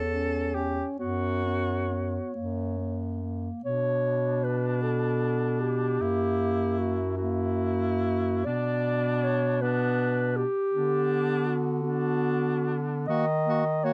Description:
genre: classical, lyrical piece for single-reed quartet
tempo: 43-56 BPM (dotted quarters)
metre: 6/8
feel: rubato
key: B minor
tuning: A4 = 440 Hz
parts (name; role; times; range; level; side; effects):
- dark clarinet; melody; 0.0-13.9 s; F#4 to Eb5; -31 LUFS; equal; none
- bright alto saxophone; second line; 0.0-13.9 s; D4 to A4; -36 LUFS; equal; none
- clear bass clarinet; bass; 0.0-13.9 s; E2 to Eb3; -32 LUFS; equal; none
- dark clarinet; accompaniment; 0.1-13.9 s; A#3 to C#4; -35 LUFS; equal; none
room: little or no reverb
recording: close, detailed microphones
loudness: -27 LUFS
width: mono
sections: 0.0-3.6 A section; 3.6-13.9 B section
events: none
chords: 0.0 A7/E; 1.0 F#sus4; 2.3 F#; 3.6 Bm; 6.0 F#7b9; 8.5 Bm; 10.7 Bm/D; 13.1 Ebm

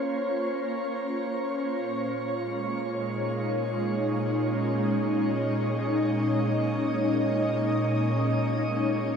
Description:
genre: ambient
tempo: free time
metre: none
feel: none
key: unclear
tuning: A4 = 440 Hz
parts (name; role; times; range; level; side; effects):
- ethereal airy pad; solo; 0.0-9.2 s; Bb2 to Eb5; -25 LUFS; equal; ensemble chorus, built-in reverb
room: wet shimmer reverb, RT60 8.2 s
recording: none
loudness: -25 LUFS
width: side -6 dB against mid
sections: 0.0-9.2 A section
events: none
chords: 0.0 Bbmadd9; 1.8 Absus4/Bb

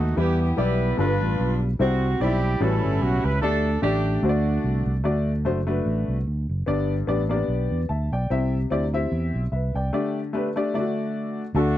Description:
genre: uptempo gospel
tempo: 148 BPM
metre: 4/4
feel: swing 56% on 8ths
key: unclear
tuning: A4 = 439 Hz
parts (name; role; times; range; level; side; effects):
- mellow horn section; melody; 0.0-5.0, 11.6-11.8 s; A3 to B4; -26 LUFS; right 2 dB; none
- warm upright piano; accompaniment; 0.0-11.8 s; G2 to A5; -25 LUFS; left 3 dB; none
- fingered electric bass; bass; 0.0-11.8 s; F#1 to E2; -24 LUFS; right 1 dB; none
room: light reverb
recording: dry, close 1970s-style studio recording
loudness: -21 LUFS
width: side -13 dB against mid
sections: 0.0-5.0 A section; 5.0-11.5 B section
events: none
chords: 0.2 Em; 1.0 G7; 1.8 C; 2.6 A13; 3.4 Dsus4; 4.2 D; 6.7 G; 8.3 C; 9.9 Dsus4; 10.7 D

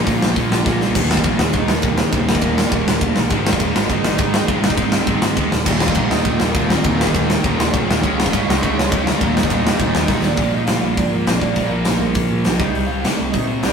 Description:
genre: punk rock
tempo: 203 BPM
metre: 4/4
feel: straight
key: Eb major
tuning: A4 = 440 Hz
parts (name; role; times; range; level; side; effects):
- cranked stack guitar; riff; 0.0-0.8, 5.7-10.4 s; Eb2 to F4; -25 LUFS; left 1 dB; overdrive
- distorted electric guitar; riff; 0.0-13.7 s; Eb2 to Db4; -24 LUFS; left 4 dB; distortion
- sludgy distorted guitar; riff; 0.0-13.7 s; Eb2 to Db4; -23 LUFS; right 2 dB; overdrive
- overdriven picked electric bass; bass; 0.0-13.7 s; Eb1 to C3; -26 LUFS; left 1 dB; none
- big rock drum kit; drums; 0.1-13.7 s; crash cymbal, hi-hat, kick drum, ride cymbal, snare drum; -18 LUFS; right 1 dB; none
- raw garage guitar; melody; 1.0-13.7 s; Bb3 to G5; -26 LUFS; right 3 dB; overdrive
room: moderate small room reverb, RT60 0.5 s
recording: rough rehearsal-room recording, tube saturation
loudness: -15 LUFS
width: side -6 dB against mid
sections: 0.9-10.4 A section; 10.4-13.7 B section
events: drum fill 0.7, 10.1; half time 10.4-13.7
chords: 0.0 Bb; 0.9 Eb5; 3.3 Ab; 5.5 Eb5; 8.0 Db; 9.2 Eb5; 10.4 Bb; 12.6 Cm

